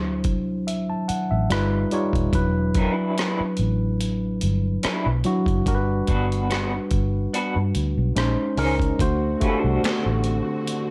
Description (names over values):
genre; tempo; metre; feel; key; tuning
R&B, neo-soul; 72 BPM; 4/4; swing 54% on 16ths; unclear; A4 = 441 Hz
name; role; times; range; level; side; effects
mellow tine electric piano; accompaniment; 0.0-10.9 s; F#3 to A5; -27 LUFS; equal; overdrive, plate reverb
vintage muted fingered electric bass; bass; 0.0-10.4 s; D#1 to G2; -26 LUFS; equal; none
boom bap sampler-style drum kit; drums; 0.2-10.9 s; finger snaps, hi-hat, kick drum, rim click, snare drum; -29 LUFS; equal; none
electric guitar through a small old amp; second line; 2.8-10.0 s; F#3 to C5; -30 LUFS; equal; tremolo, plate reverb
muted studio string section; sustained chords; 9.0-10.9 s; D3 to F#4; -34 LUFS; equal; plate reverb
room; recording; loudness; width
light reverb; dark, warm production; -23 LUFS; mono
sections
0.0-9.0 A section; 9.0-10.9 B section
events
none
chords
0.0 D9; 1.5 Gaug7; 2.3 E9sus4; 5.7 Gmaj7; 8.2 Bbm11; 9.0 D7